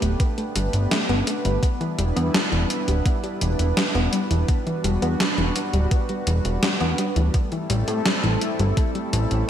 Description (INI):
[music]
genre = synthwave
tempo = 84 BPM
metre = 4/4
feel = straight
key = unclear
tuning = A4 = 440 Hz
[part]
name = chorused pulse-width pad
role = sustained chords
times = 0.0-9.5 s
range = G3 to B4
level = -27 LUFS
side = right 1 dB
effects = sidechain pumping
[part]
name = soft round pluck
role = arpeggios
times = 0.0-9.3 s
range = E3 to B3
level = -28 LUFS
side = left 2 dB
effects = chorus, ping-pong delay
[part]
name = fat analog bass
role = bass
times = 0.0-9.4 s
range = D1 to A2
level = -22 LUFS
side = equal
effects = none
[part]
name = gated 80s digital drum machine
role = drums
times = 0.0-9.5 s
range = hi-hat, snare drum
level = -25 LUFS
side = equal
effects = gated reverb, gated reverb snare, overdrive
[part]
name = electronic kick drum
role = drums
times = 0.2-8.9 s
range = none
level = -21 LUFS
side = equal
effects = overdrive
[sound]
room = moderate lush hall reverb, RT60 1.9 s, digital ambience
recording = bright 1980s-style digital production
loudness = -20 LUFS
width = side -10 dB against mid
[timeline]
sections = 0.0-9.5 A section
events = none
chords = 0.0 Gadd9; 1.6 Em7; 7.3 Am7